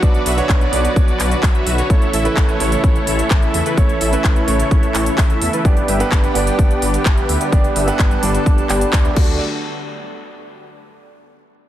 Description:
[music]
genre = EDM, festival progressive house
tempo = 128 BPM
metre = 4/4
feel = straight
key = unclear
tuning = A4 = 440 Hz
[part]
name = warm grand piano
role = accompaniment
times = 0.0-9.4 s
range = A3 to D5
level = -22 LUFS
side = right 4 dB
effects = sidechain pumping, dub echo
[part]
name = lush unison pad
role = sustained chords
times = 0.0-9.4 s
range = C#3 to A4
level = -26 LUFS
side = left 1 dB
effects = chorus, sidechain pumping
[part]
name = dense compressed supersaw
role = riff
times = 0.0-9.3 s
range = E4 to E5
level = -22 LUFS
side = equal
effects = sidechain pumping, low-pass filter, dub echo
[part]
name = wide detuned saw bass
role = bass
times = 0.0-9.4 s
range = G1 to E2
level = -22 LUFS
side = equal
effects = chorus, sidechain pumping
[part]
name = electronic kick drum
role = drums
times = 0.0-9.3 s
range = none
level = -15 LUFS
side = equal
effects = studio reverb
[part]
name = house drum kit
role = drums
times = 0.0-9.3 s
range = crash cymbal, handclaps, hi-hat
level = -24 LUFS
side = equal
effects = studio reverb
[sound]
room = light reverb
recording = dense, heavily limited modern master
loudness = -13 LUFS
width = side -12 dB against mid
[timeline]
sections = 0.0-9.4 A section; 9.4-11.3 B section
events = filter sweep on supersaw synth 0.0-9.4; filter sweep on detuned saw bass 0.0-9.4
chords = 0.0 Bm; 1.9 A; 5.7 G; 9.2 D; 9.4 N.C.

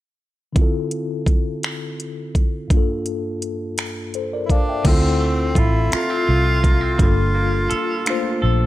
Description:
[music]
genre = slow six-eight R&B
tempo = 56 BPM (dotted quarters)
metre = 6/8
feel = straight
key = unclear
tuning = A4 = 440 Hz
[part]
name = mellow tine electric piano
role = accompaniment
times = 0.5-8.7 s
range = G2 to G5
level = -24 LUFS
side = left 3 dB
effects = medium stereo tremolo
[part]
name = smooth R&B drum kit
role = drums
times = 0.6-8.2 s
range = crash cymbal, finger snaps, hi-hat, kick drum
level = -19 LUFS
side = equal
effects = overdrive, vintage 12-bit sampler grit
[part]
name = breathy tenor saxophone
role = melody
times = 4.5-8.4 s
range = C4 to F4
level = -23 LUFS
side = equal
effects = none
[part]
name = clean electric guitar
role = second line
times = 4.8-8.7 s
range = D3 to A4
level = -28 LUFS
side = right 4 dB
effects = none
[part]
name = vintage muted fingered electric bass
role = bass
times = 4.9-8.7 s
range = G1 to D2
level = -19 LUFS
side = equal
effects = none
[sound]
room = little or no reverb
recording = none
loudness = -17 LUFS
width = side -15 dB against mid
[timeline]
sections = 0.6-4.8 A section; 4.8-8.7 B section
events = none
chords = 0.6 Dm7; 2.7 Gm9; 4.8 Dm7; 7.0 Gm9

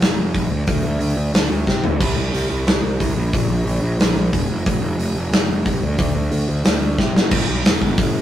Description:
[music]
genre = punk rock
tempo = 181 BPM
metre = 4/4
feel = straight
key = unclear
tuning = A4 = 440 Hz
[part]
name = fuzz picked electric bass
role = bass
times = 0.0-8.2 s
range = E1 to C3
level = -20 LUFS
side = equal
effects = overdrive
[part]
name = big rock drum kit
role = drums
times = 0.0-8.1 s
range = crash cymbal, hi-hat, kick drum, snare drum, toms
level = -18 LUFS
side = equal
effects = none
[sound]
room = light reverb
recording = rough rehearsal-room recording, warm saturation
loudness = -16 LUFS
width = side -11 dB against mid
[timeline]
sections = 0.0-7.3 A section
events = half time 0.0-7.3; drum fill 1.7-2.0, 7.0-7.3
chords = none

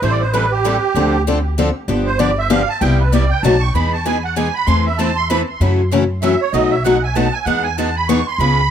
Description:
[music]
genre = acoustic string swing (jazz manouche)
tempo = 193 BPM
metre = 3/4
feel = swing 61% on 8ths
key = C major, E major from 3.7 s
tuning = A4 = 440 Hz
[part]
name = musette accordion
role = second line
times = 0.0-8.7 s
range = G4 to Db6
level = -19 LUFS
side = right 5 dB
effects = tape echo
[part]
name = picked steel-string acoustic guitar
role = accompaniment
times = 0.0-8.6 s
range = B2 to B4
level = -18 LUFS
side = left 5 dB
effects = none
[part]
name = picked steel-string acoustic guitar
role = accompaniment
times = 0.0-8.6 s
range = B2 to B4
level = -23 LUFS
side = right 4 dB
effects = none
[part]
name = upright bass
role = bass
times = 0.0-8.7 s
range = G1 to F#2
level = -19 LUFS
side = equal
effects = none
[sound]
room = light reverb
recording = close, detailed microphones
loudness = -14 LUFS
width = side -9 dB against mid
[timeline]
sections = 0.0-3.7 A section; 3.7-8.7 A section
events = accordion solo 0.0-8.7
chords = 0.0 Am7; 1.0 Dm7; 1.9 G7; 2.8 Cmaj7; 3.4 B7; 3.7 Emaj7; 4.7 Amadd9/E; 5.6 F#m7; 6.5 B7; 7.5 Emaj7

